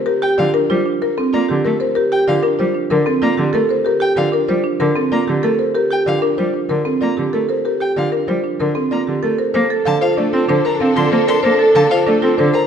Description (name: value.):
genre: classical, minimalist pattern music.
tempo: 190 BPM.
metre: 6/4.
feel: straight.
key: G minor, Bb major from 9.5 s.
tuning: A4 = 441 Hz.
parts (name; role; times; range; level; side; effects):
buzzing marimba with medium mallets; melody; 0.0-12.7 s; A4 to F5; -20 LUFS; left 8 dB; none.
marimba with medium mallets; arpeggios; 0.0-12.7 s; C4 to C5; -18 LUFS; right 5 dB; none.
rich violin; arpeggios; 0.2-12.7 s; F5 to C6; -26 LUFS; left 3 dB; none.
clear cello; accompaniment; 0.4-12.5 s; D3-22c to C4; -21 LUFS; equal; none.
clear French horn; second line; 9.5-12.7 s; A4; -21 LUFS; right 3 dB; none.
rich studio string section; sustained chords; 9.5-12.7 s; D4 to A4; -20 LUFS; left 5 dB; none.
room: moderate recital hall reverb, RT60 1.6 s.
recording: dark, warm production.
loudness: -14 LUFS.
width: side -8 dB against mid.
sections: 0.0-9.5 A section; 9.5-12.7 B section.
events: none.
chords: 0.0 Gm9; 9.5 Bbmaj7.